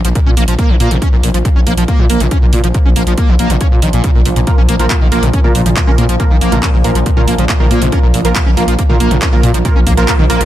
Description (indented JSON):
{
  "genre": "driving peak-time techno",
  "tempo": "139 BPM",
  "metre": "4/4",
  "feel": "straight",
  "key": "unclear",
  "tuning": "A4 = 441 Hz",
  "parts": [
    { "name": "screaming distorted acid line", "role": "riff", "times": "0.0-10.4 s", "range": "Bb2 to Db4", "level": "-17 LUFS", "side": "equal", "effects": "distortion, ensemble chorus, sidechain pumping, dub echo" },
    { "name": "growling FM bass", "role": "bass", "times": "0.0-10.4 s", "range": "Bb1 to Bb2", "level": "-15 LUFS", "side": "equal", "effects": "sidechain pumping" },
    { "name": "deep dark ambient pad", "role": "drone", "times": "0.0-10.4 s", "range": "Bb2 to F3", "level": "-21 LUFS", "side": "equal", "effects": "chorus, built-in reverb, sidechain pumping" },
    { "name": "techno drum kit", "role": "drums", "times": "0.0-10.4 s", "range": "handclaps, hi-hat, toms", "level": "-20 LUFS", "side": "equal", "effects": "sidechain pumping on hats, sidechain pumping on toms" },
    { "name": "electronic kick drum", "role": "drums", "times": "0.2-10.2 s", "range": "none", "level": "-12 LUFS", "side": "equal", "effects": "none" },
    { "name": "supersaw stab", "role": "stabs", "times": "4.5-10.4 s", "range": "Bb3 to Bb4", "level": "-19 LUFS", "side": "right 3 dB", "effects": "cassette tape, sidechain pumping, dub echo" }
  ],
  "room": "digital ambience",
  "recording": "none",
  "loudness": "-9 LUFS",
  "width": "side -13 dB against mid",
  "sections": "0.0-10.4 A section",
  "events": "none",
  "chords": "0.0 Bb5",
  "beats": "0.16 0.59 | 1.02 1.45 1.88 2.31 | 2.75 3.18 3.61 4.04 | 4.47 4.90 5.33 5.77 | 6.20 6.63 7.06 7.49 | 7.92 8.36 8.79 9.22 | 9.65 10.08"
}